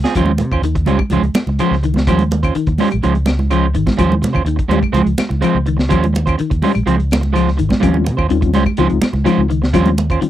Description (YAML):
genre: afrobeat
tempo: 125 BPM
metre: 4/4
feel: straight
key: Eb mixolydian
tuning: A4 = 440 Hz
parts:
  - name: electric guitar at the edge of break-up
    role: stabs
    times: 0.0-10.3 s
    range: G3 to C5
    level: -18 LUFS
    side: right 7 dB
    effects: none
  - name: fingered electric bass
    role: bass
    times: 0.0-10.2 s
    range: Ab1 to C3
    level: -17 LUFS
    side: equal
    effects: none
  - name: crunchy breakbeat drum kit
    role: drums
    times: 0.0-10.3 s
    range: hi-hat, kick drum, snare drum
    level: -20 LUFS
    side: equal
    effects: none
  - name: electric guitar at the edge of break-up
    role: arpeggios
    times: 0.2-10.3 s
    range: Eb3 to G3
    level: -19 LUFS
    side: left 6 dB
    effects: ensemble chorus
  - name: claves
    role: percussion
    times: 0.2-10.2 s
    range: none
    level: -30 LUFS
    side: left 12 dB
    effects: none
  - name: congas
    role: percussion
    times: 0.3-10.1 s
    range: none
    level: -20 LUFS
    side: right 2 dB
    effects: none
  - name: mellow reed electric piano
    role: accompaniment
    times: 7.8-10.3 s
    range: G3 to F4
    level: -18 LUFS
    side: left 6 dB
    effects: fast tremolo
room: light reverb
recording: dry, close 1970s-style studio recording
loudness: -13 LUFS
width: side -12 dB against mid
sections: 0.2-10.3 A section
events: none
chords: 0.2 Eb13; 1.1 Dbmaj7; 2.1 Eb13; 3.0 Dbmaj7; 4.0 Eb13; 5.0 Dbmaj7; 5.9 Eb13; 6.9 Dbmaj7; 7.8 Eb13; 8.8 Dbmaj7; 9.7 Eb13